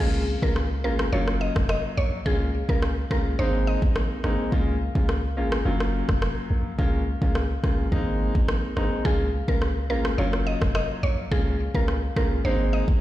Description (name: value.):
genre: dancehall.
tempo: 106 BPM.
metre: 4/4.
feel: straight.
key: Db major.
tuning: A4 = 440 Hz.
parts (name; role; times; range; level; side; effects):
mallet-like synth pluck; melody; 0.0-3.8, 9.1-12.8 s; Ab4 to Eb5; -30 LUFS; right 1 dB; chorus, ping-pong delay.
clear grand piano; accompaniment; 0.0-13.0 s; Gb3 to F4; -28 LUFS; left 1 dB; none.
warm 808-style bass; bass; 0.0-13.0 s; F1 to Db2; -26 LUFS; equal; none.
afro-pop drum kit; drums; 0.4-13.0 s; kick drum, rim click; -26 LUFS; equal; none.
room: little or no reverb.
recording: played on a big sound system in a bare room, stone room reverb.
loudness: -22 LUFS.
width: side -14 dB against mid.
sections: 0.0-13.0 A section.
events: none.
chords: 0.0 Db6; 1.1 Gbmaj7; 2.3 Db6; 3.4 Abadd9; 4.5 Db6; 5.7 Gbmaj7; 6.8 Db6; 7.9 Abadd9; 9.1 Db6; 10.2 Gbmaj7; 11.3 Db6; 12.4 Abadd9.